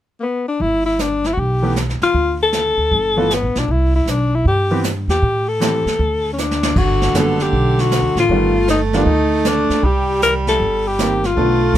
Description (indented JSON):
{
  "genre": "jazz, small-group swing and bop",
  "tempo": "156 BPM",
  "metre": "4/4",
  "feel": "swing 65% on 8ths",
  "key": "G major",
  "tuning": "A4 = 440 Hz",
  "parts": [
    { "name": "clear alto saxophone", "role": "melody", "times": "0.2-11.8 s", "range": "Bb3 to Bb4", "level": "-17 LUFS", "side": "left 3 dB", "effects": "none" },
    { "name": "upright bass", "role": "bass", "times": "0.6-11.8 s", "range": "F#1 to A2", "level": "-20 LUFS", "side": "equal", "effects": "none" },
    { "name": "jazz brush drum kit", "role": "drums", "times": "0.6-11.8 s", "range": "brushed snare drum, hi-hat, kick drum, ride cymbal, snare drum", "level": "-24 LUFS", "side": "right 1 dB", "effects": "none" },
    { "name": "bright upright piano", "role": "accompaniment", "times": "1.6-11.6 s", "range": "D3 to G4", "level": "-20 LUFS", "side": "right 1 dB", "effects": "none" },
    { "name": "warm baritone saxophone", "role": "second line", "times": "6.8-11.8 s", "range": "D3 to A3", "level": "-20 LUFS", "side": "right 5 dB", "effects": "none" }
  ],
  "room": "little or no reverb",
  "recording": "none",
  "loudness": "-14 LUFS",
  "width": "side -12 dB against mid",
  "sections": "0.6-6.8 A section; 6.8-11.8 B section",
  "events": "drum fill 6.4-6.8",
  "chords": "0.0 N.C.; 0.6 G6; 2.1 D5; 2.9 G13; 3.7 Cmaj7; 5.2 Am7; 6.0 D5; 6.8 Gmaj7; 8.3 G7b13; 9.8 Cm7"
}